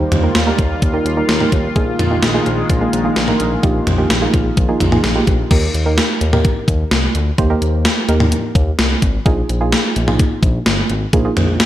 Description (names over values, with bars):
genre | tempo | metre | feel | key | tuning
synth-pop | 128 BPM | 4/4 | straight | Eb major | A4 = 440 Hz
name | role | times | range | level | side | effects
soft round pluck | accompaniment | 0.0-11.7 s | Bb3 to C5 | -20 LUFS | right 2 dB | chorus
chorused pulse-width pad | sustained chords | 0.0-5.5 s | Eb3 to F4 | -23 LUFS | left 1 dB | none
smooth synth bass | bass | 0.0-11.6 s | G1 to Eb2 | -19 LUFS | equal | none
gated 80s digital drum machine | drums | 0.1-11.7 s | crash cymbal, hi-hat, kick drum, snare drum, toms | -16 LUFS | equal | gated reverb, gated reverb snare, overdrive
room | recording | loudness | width
light reverb | none | -13 LUFS | side -13 dB against mid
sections
0.0-5.5 A section; 5.5-11.7 B section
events
none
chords
0.0 Eb; 1.8 Bb7sus4; 5.5 Eb; 9.3 Bb7sus4